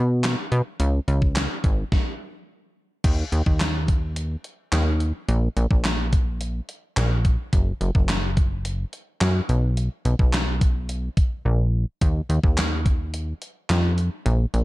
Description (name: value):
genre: dance-pop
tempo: 107 BPM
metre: 4/4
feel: straight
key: Eb minor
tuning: A4 = 441 Hz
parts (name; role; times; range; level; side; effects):
- plucky analog bass; bass; 0.0-14.6 s; Gb1 to B2; -22 LUFS; equal; sidechain pumping
- gated 80s digital drum machine; drums; 0.2-14.6 s; crash cymbal, handclaps, hi-hat, kick drum, snare drum; -22 LUFS; equal; gated reverb, gated reverb snare
room: little or no reverb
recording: dark, warm production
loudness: -20 LUFS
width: side -19 dB against mid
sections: 0.0-3.0 A section; 3.0-14.6 B section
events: stop 1.9-3.0; drums muted 11.5-12.0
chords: none